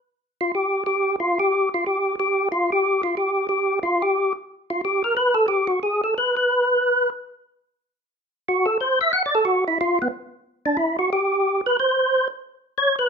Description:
jazz; 181 BPM; 4/4; swing 62% on 8ths; G mixolydian; A4 = 439 Hz
percussive tonewheel organ; solo; 0.4-13.1 s; B3 to F#5; -19 LUFS; equal; slow rotary speaker, overdrive, chorus vibrato
light reverb; minimal, uncompressed stereo recording; -19 LUFS; side -6 dB against mid
0.0-12.4 A section
tonewheel organ solo 0.0-12.4

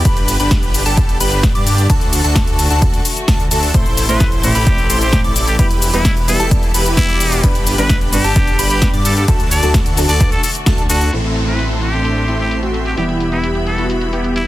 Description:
EDM, festival progressive house; 130 BPM; 4/4; straight; A4 = 441 Hz
rich symphonic string section; sustained chords; 0.0-14.5 s; C3 to C6; -28 LUFS; left 2 dB; sidechain pumping
plucky unison lead; arpeggios; 0.0-11.1 s; A5 to D6; -23 LUFS; equal; sidechain pumping, dub echo
supersaw chords; riff; 0.0-14.4 s; A3 to D5; -21 LUFS; equal; sidechain pumping, low-pass filter
detuned saw bass; bass; 0.0-14.5 s; E1 to G2; -19 LUFS; equal; sidechain pumping
electronic kick drum; drums; 0.1-10.8 s; -15 LUFS; equal
house drum kit; drums; 0.1-14.5 s; crash cymbal, hi-hat, shaker, snare drum; -21 LUFS; left 2 dB; low-pass filter on snare, low-pass filter on hats, low-pass filter on cymbals, low-pass filter on perc
felt-muted upright piano; accompaniment; 3.7-14.5 s; G2 to D5; -24 LUFS; equal; sidechain pumping
trumpet with straight mute; melody; 4.1-14.5 s; E4 to D5; -21 LUFS; equal; dub echo
downlifter; sound effects; 11.1-14.5 s; -28 LUFS; equal
little or no reverb; dense, heavily limited modern master; -12 LUFS; side -15 dB against mid
0.0-11.1 A section; 11.1-14.5 B section
drop 0.0-11.1; band accent 10.7
0.1 G; 1.9 D; 3.7 Am; 5.6 Em; 7.4 G; 9.3 D; 11.1 Am; 13.0 Em

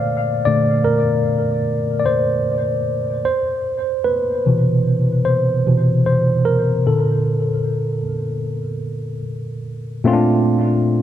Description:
R&B; 75 BPM; 4/4; swing 62% on 16ths; A4 = 440 Hz
tine electric piano; solo; 0.0-11.0 s; Bb2 to F5; -16 LUFS; equal; auto-pan, diffuse ambient delay
light reverb; -16 LUFS; side -11 dB against mid
0.0-10.1 A section
tine electric piano solo 0.0-10.1
0.0 Bbmaj9; 3.3 Cmaj7; 6.9 Bbmaj7; 10.1 Bbmaj9

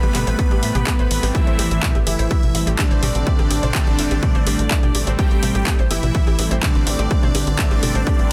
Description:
melodic techno; 125 BPM; 4/4; straight; A minor; A4 = 440 Hz
soft supersaw; melody; 0.0-8.3 s; D3 to B4; -27 LUFS; equal; sidechain pumping, tape echo
big bright polysynth; second line; 0.0-8.3 s; D5 to B5; -32 LUFS; equal; chorus, sidechain pumping, digital delay
warbly dusty pluck; arpeggios; 0.0-8.3 s; G4 to E5; -34 LUFS; equal; subtle chorus, cassette tape, sidechain pumping, digital delay
brassy analog pad; stabs; 0.0-8.3 s; C3 to C4; -31 LUFS; equal; chorus, tremolo, sidechain pumping, digital delay
tight sequencer bass; bass; 0.0-8.3 s; G1 to A2; -24 LUFS; equal; sidechain pumping
analog drone; drone; 0.0-8.3 s; A2 to E3; -38 LUFS; equal
techno drum kit; drums; 0.0-8.3 s; handclaps, hi-hat, toms; -27 LUFS; equal; overdrive, studio reverb
warbly tape-like pad; texture; 0.0-8.3 s; A3 to D6; -36 LUFS; equal
electronic kick drum; drums; 0.4-8.2 s; -20 LUFS; equal; overdrive, studio reverb
little or no reverb; dense, heavily limited modern master; -18 LUFS; mono
0.0-8.3 A section
0.0 Am7

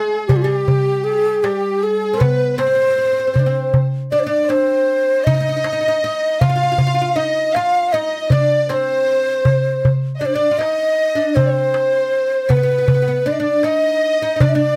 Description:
Arabic maqam ensemble; 79 BPM; 4/4; straight; A4 = 444 Hz
breathy mellow ney; melody; 0.0-14.8 s; F4 to F5; -19 LUFS; equal
oud; second line; 0.0-14.8 s; G3 to F4; -28 LUFS; equal
warm studio violin section; second line; 0.0-14.8 s; G4 to F5; -29 LUFS; equal
darbuka; percussion; 0.3-14.7 s; -20 LUFS; equal
moderate studio reverb, RT60 0.6 s; -17 LUFS; mono
0.0-14.8 A section

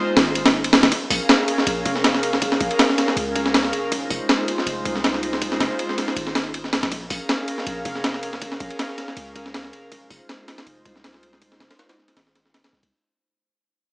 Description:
drum and bass, jungle; 160 BPM; 4/4; swing 54% on 16ths; Bb minor; A4 = 440 Hz
airy breathy pad; sustained chords; 0.0-12.3 s; Ab3 to F5; -25 LUFS; equal; chorus
warm 808-style bass; bass; 0.2-12.9 s; F1 to Db2; -34 LUFS; equal; tube saturation
breakbeat sampler-style drum kit; drums; 0.2-12.9 s; hi-hat, kick drum, ride cymbal, snare drum; -20 LUFS; equal; high-pass filter on snare, studio reverb, high-pass filter on cymbals, high-pass filter on kick, high-pass filter on hats
moderate lush hall reverb, RT60 1.8 s; vinyl crackle, small speaker sound; -19 LUFS; side -32 dB against mid
0.9-12.9 A section
fade-out 0.9-12.9
0.0 Fm7; 0.9 Bbm7; 3.9 Fm7; 6.9 Bbm7; 9.9 Fm7

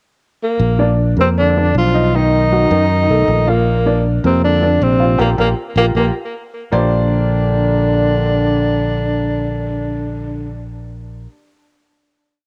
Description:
jazz; 157 BPM; 4/4; straight; Bb major; A4 = 438 Hz
breathy tenor saxophone; melody; 0.4-10.6 s; Bb3 to F4; -20 LUFS; equal; cassette tape, analog delay
fingered electric bass; bass; 0.6-11.3 s; Bb1 to F#2; -19 LUFS; equal
warm baby grand piano; accompaniment; 0.8-11.3 s; D#3 to F5; -23 LUFS; equal
dark trombone; second line; 1.2-10.6 s; Bb2 to F3; -26 LUFS; equal
light reverb, studio ambience; home recording on cassette; -15 LUFS; mono
0.0-0.6 pickup bar; 0.6-6.7 A section; 6.7-9.8 final chord
band accent 5.2-6.7
0.0 N.C.; 0.6 Bb; 2.1 B7; 3.7 Bb69

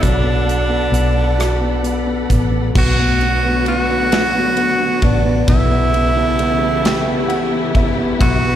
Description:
six-eight pop ballad; 44 BPM (dotted quarters); 6/8; straight; B minor; A4 = 439 Hz
edgy tenor saxophone; melody; 0.0-8.6 s; D4 to F#4; -19 LUFS; right 2 dB; slapback echo, tape echo
dark upright piano; accompaniment; 0.0-8.6 s; F#3 to F#5; -21 LUFS; left 2 dB; slapback echo
warm studio string section; sustained chords; 0.0-8.6 s; C#3 to B5; -22 LUFS; equal
vintage muted fingered electric bass; bass; 0.0-8.6 s; A1 to B1; -19 LUFS; equal
modern studio drum kit; drums; 0.0-8.4 s; crash cymbal, hi-hat, kick drum, ride cymbal, rim click, snare drum; -20 LUFS; equal
light reverb; live gig heard through the venue's PA, recital hall reverb; -13 LUFS; side -11 dB against mid
0.0-2.8 A section; 2.8-8.6 B section
upright piano fill 6.8-8.2
0.0 Bm7; 5.5 A7/B

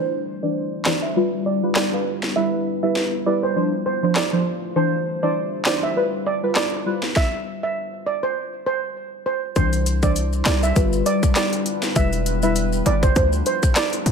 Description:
dancehall; 100 BPM; 4/4; swing 56% on 16ths; C major; A4 = 440 Hz
steel pan; melody; 0.0-14.1 s; C5 to E5; -25 LUFS; right 5 dB; low-pass filter
deep mellow chord stab; accompaniment; 0.0-14.1 s; E3 to C5; -23 LUFS; left 1 dB; chorus, phaser, low-pass filter
deep dark ambient pad; sustained chords; 0.0-14.1 s; G3 to C5; -28 LUFS; left 3 dB; chorus, built-in reverb, sidechain pumping, low-pass filter
island pop drum kit; drums; 0.9-14.1 s; handclaps, hi-hat, kick drum, rim click, snare drum; -22 LUFS; equal; overdrive
hard-hitting 808-style bass; bass; 9.6-14.1 s; E1 to D2; -21 LUFS; equal
maracas and timbales; percussion; 9.6-14.1 s; -34 LUFS; left 6 dB
light reverb, digital ambience; -19 LUFS; side -6 dB against mid
0.0-9.6 A section; 9.6-14.1 B section
filter sweep 0.0-9.6; stop 7.2-9.6
0.0 Cadd9; 1.2 G7; 2.4 Em; 3.6 Dm7; 4.8 Cadd9; 6.0 G7; 7.2 N.C.; 9.6 Cadd9; 10.8 G7; 12.0 Em; 13.2 Dm7

